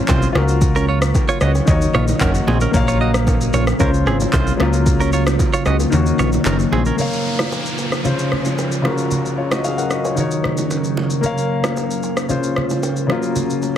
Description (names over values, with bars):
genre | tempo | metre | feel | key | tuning
afrobeats | 113 BPM | 4/4 | straight | unclear | A4 = 440 Hz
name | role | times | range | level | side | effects
warm grand piano | accompaniment | 0.0-13.8 s | Db3 to Gb5 | -22 LUFS | left 4 dB | none
deep dark ambient pad | sustained chords | 0.0-13.8 s | Db3 to F5 | -23 LUFS | right 1 dB | chorus, built-in reverb
direct-recorded clean electric guitar | riff | 0.1-7.0 s | C4 to Eb5 | -23 LUFS | right 5 dB | tremolo, tape echo
plucky analog bass | bass | 0.1-6.9 s | Gb1 to Eb2 | -18 LUFS | equal | none
afro-pop drum kit | drums | 0.1-13.8 s | handclaps, kick drum, rim click, shaker | -21 LUFS | equal | overdrive
bongos and congas | percussion | 0.1-13.8 s | none | -27 LUFS | right 4 dB | none
downlifter and swell | sound effects | 7.0-13.8 s | none | -30 LUFS | equal | none
room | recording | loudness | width
light reverb, digital ambience | heavily compressed radio sound, multiband compression | -15 LUFS | side -10 dB against mid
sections
0.0-7.0 A section; 7.0-13.8 B section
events
grand piano fill 1.1-2.7; kick muted 5.9-7.0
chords
0.3 Gbmaj7/Db; 1.7 Ebm7; 2.7 Bbm; 3.8 Dbmaj7; 4.6 Gbmaj7/Db; 5.9 Ebm7; 7.0 Bbm; 8.0 Dbmaj7; 8.8 Gbmaj7/Db; 10.2 Ebm7; 11.2 Bbm; 12.3 Dbmaj7; 13.1 Gbmaj7/Db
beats
0.08 | 0.61 1.15 1.68 2.21 | 2.74 3.27 3.80 4.33 | 4.86 5.39 5.92 6.46 | 6.99 7.52 8.05 8.58 | 9.11 9.64 10.17 10.70 | 11.23 11.77 12.30 12.83 | 13.36